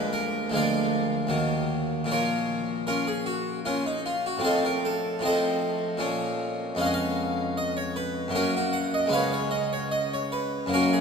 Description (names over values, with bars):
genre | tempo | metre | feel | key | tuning
classical, baroque-style suite movement for harpsichord | 77 BPM | 3/4 | rubato | unclear | A4 = 440 Hz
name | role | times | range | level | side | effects
harpsichord | solo | 0.0-11.0 s | C#2 to F#5 | -24 LUFS | equal | none
room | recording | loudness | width
wet cathedral reverb, RT60 4.2 s | minimal, uncompressed stereo recording | -24 LUFS | side -6 dB against mid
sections
0.0-11.0 A section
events
none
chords
0.0 Bb7/D; 1.3 Ebm; 2.1 Bbm; 4.4 F7/A; 6.0 Bbm; 6.8 C#7/E#; 8.3 F#; 9.1 C#5